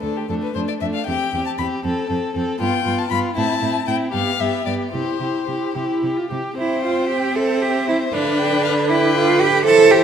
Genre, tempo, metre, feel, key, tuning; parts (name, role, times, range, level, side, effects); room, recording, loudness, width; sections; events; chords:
quick classical-period movement for string quartet; 78 BPM (dotted quarters); 6/8; rubato; C major; A4 = 441 Hz
warm violin; melody; 0.0-10.0 s; G4 to B5; -25 LUFS; left 9 dB
warm violin; second line; 0.0-10.0 s; D4 to C5; -24 LUFS; left 3 dB
warm viola; accompaniment; 0.0-10.0 s; D3 to G4; -23 LUFS; right 1 dB
rich cello; bass; 0.0-10.0 s; D2 to A4; -19 LUFS; right 4 dB
moderate scoring stage reverb, RT60 1.7 s; -17 LUFS; side -8 dB against mid
0.0-6.6 A section; 6.6-10.0 B section
0.3 Dm/F; 1.1 C/E; 1.8 F; 2.6 G7; 3.4 Am; 4.1 G; 4.9 C; 8.1 G7/D